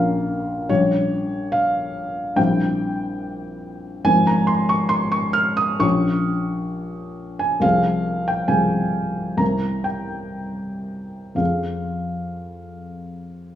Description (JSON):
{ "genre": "classical, romantic nocturne for solo piano", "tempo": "53-73 BPM", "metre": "4/4", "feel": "rubato", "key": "F minor", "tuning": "A4 = 441 Hz", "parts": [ { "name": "felt-muted upright piano", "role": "solo", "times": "0.0-13.6 s", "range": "Ab1 to F6", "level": "-20 LUFS", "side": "equal", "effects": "none" } ], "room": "wet recital hall reverb, RT60 1.4 s", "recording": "recorded in a church or concert hall, small room ambience", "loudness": "-19 LUFS", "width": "side -11 dB against mid", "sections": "0.0-13.6 A section", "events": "none", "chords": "0.0 Bbm; 0.7 Gdim/Bb; 2.4 C7/Bb; 4.1 Fm/Ab; 5.8 Gm7b5/Bb; 7.6 Fm/C; 9.4 C7; 11.4 Fm" }